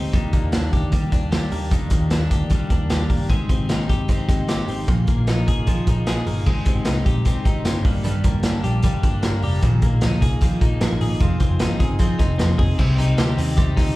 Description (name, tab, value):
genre	jangly indie pop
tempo	152 BPM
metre	4/4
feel	straight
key	Eb major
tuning	A4 = 440 Hz
part	picked steel-string acoustic guitar	accompaniment	0.0-14.0 s	G2 to Ab4	-27 LUFS	right 3 dB	slapback echo
part	twelve-string electric guitar	arpeggios	0.0-14.0 s	G2 to Ab4	-25 LUFS	left 3 dB	none
part	vintage muted picked electric bass	bass	0.0-13.9 s	F1 to Eb2	-23 LUFS	equal	none
part	raw garage drum kit	drums	0.1-13.9 s	crash cymbal, hi-hat, kick drum, snare drum	-20 LUFS	equal	none
room	studio ambience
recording	live gig heard through the venue's PA, club reverb, vinyl crackle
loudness	-17 LUFS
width	side -18 dB against mid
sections	0.0-6.5 A section; 6.5-12.8 B section; 12.8-14.0 C section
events	none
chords	0.1 Ebmaj7; 3.3 Abmaj7; 4.9 Bb7sus4; 6.5 Abmaj7; 7.8 Ebmaj7/G; 9.6 Bb7sus4; 11.2 Fm7; 12.8 Cm